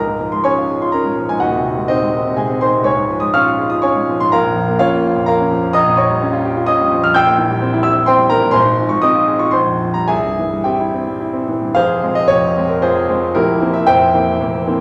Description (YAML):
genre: classical, romantic character piece for solo piano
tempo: 104-130 BPM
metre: 3/4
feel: rubato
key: Db major, F minor from 5.7 s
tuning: A4 = 438 Hz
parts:
  - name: clear concert grand piano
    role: solo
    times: 0.0-14.8 s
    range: Eb1 to G6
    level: -15 LUFS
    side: equal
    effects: none
room: wet recital hall reverb, RT60 1.6 s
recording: none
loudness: -15 LUFS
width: mono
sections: 0.0-11.8 A section; 11.8-14.8 B section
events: none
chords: 0.0 Db; 1.4 Ab7/Eb; 2.9 Db; 4.3 Bbm; 5.7 Gm7b5/Bb; 7.2 C7/Bb; 8.6 Fm/Ab; 9.5 Bbsus2; 10.1 C; 11.8 Fm; 13.4 C7/F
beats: 0.45 0.93 | 1.42 1.90 2.39 | 2.87 3.34 3.83 | 4.32 4.79 5.27 | 5.74 6.21 6.68 | 7.16 7.62 8.09 | 8.56 9.04 9.54 | 10.09 10.65 11.21 | 11.77 12.30 12.84 | 13.36 13.88 14.41